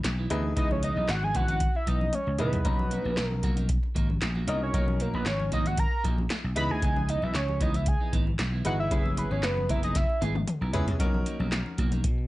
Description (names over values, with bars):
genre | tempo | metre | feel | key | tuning
early-eighties boogie funk | 115 BPM | 4/4 | straight | B major | A4 = 440 Hz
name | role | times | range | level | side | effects
clean electric guitar | riff | 0.0-12.2 s | E3 to A#4 | -37 LUFS | right 5 dB | lush chorus
vintage slap bass | bass | 0.0-12.3 s | F#1 to B2 | -29 LUFS | equal | none
electro analog drum machine | drums | 0.0-12.2 s | handclaps, hi-hat, kick drum, snare drum, toms | -29 LUFS | equal | none
congas | percussion | 0.0-12.2 s | none | -38 LUFS | left 3 dB | none
clear concert grand piano | accompaniment | 0.3-11.8 s | C#4 to A#5 | -36 LUFS | left 2 dB | none
fat analog lead | melody | 0.6-10.2 s | A#4 to B5 | -30 LUFS | right 1 dB | chorus
room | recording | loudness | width
light reverb, digital ambience | nothing above 10.5 kHz | -25 LUFS | side -17 dB against mid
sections
0.0-11.0 A section; 11.0-12.3 B section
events
analog synth lead solo 0.0-11.0; drum fill 2.1-2.7, 10.0-11.0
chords
0.0 C#m9; 2.7 Bmaj7; 6.6 C#m9; 8.9 F#9sus4; 11.0 Bmaj7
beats
0.04 | 0.56 1.09 1.61 2.13 | 2.65 3.17 3.70 4.22 | 4.74 5.26 5.78 6.30 | 6.83 7.35 7.87 8.39 | 8.91 9.44 9.96 10.48 | 11.00 11.52 12.04